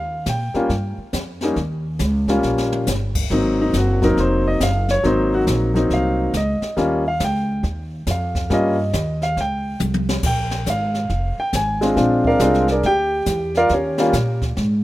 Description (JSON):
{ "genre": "jazz piano trio", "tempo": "138 BPM", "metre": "4/4", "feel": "swing 65% on 8ths", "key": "Eb mixolydian", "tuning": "A4 = 443 Hz", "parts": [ { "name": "warm concert grand piano", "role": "melody", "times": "0.0-14.4 s", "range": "Gb3 to Ab5", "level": "-19 LUFS", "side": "equal", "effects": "none" }, { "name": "upright bass", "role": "bass", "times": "0.0-14.8 s", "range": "F1 to Bb2", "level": "-22 LUFS", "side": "equal", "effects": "none" }, { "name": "jazz brush drum kit", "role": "drums", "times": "0.3-14.8 s", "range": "brushed snare drum, crash cymbal, hi-hat, kick drum, snare drum, toms", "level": "-26 LUFS", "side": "equal", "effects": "none" } ], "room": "small room ambience", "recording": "rough home demo mix", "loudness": "-17 LUFS", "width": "side -16 dB against mid", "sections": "0.0-14.8 A section", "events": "drum fill 2.4-2.9, 9.8-10.2", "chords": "0.0 Eb7; 3.3 Ab7; 6.8 Eb7; 10.2 Bb7; 13.7 Eb7" }